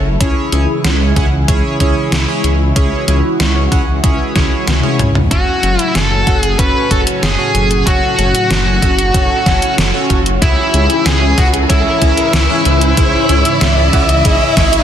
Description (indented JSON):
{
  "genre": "synthwave",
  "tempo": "94 BPM",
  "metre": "4/4",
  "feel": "straight",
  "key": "F# minor",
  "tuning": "A4 = 439 Hz",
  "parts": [
    { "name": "phased analog pad", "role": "sustained chords", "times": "0.0-14.8 s", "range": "G#2 to A4", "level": "-20 LUFS", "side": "equal", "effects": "phaser, chorus, sidechain pumping" },
    { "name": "dark detuned saw bass", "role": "bass", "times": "0.0-14.8 s", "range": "F#1 to C#2", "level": "-16 LUFS", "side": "equal", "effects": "sidechain pumping" },
    { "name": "chorused polysynth", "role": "stabs", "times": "0.2-14.8 s", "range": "C#4 to F#5", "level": "-20 LUFS", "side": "right 2 dB", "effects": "vintage 12-bit sampler grit, ping-pong delay" },
    { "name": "detuned 8-bit digital drum machine", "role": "drums", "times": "0.2-14.8 s", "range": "hi-hat, snare drum, toms", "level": "-18 LUFS", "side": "equal", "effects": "none" },
    { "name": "electronic kick drum", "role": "drums", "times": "0.2-14.7 s", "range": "none", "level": "-15 LUFS", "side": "equal", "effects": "none" },
    { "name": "high-gain lead guitar", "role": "melody", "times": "5.3-14.8 s", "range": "E4 to B4", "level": "-14 LUFS", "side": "equal", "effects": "distortion, digital delay" },
    { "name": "riser", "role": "sound effects", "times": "6.7-14.8 s", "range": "none", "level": "-24 LUFS", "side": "equal", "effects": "none" }
  ],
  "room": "moderate lush hall reverb, RT60 2.9 s",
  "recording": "dense, heavily limited modern master",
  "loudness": "-10 LUFS",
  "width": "side -9 dB against mid",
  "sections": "0.0-5.3 A section; 5.3-14.8 B section",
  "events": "drum fill 4.7-5.3; riser 6.7-14.8",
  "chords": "0.2 C#m; 5.3 F#m; 10.4 C#m"
}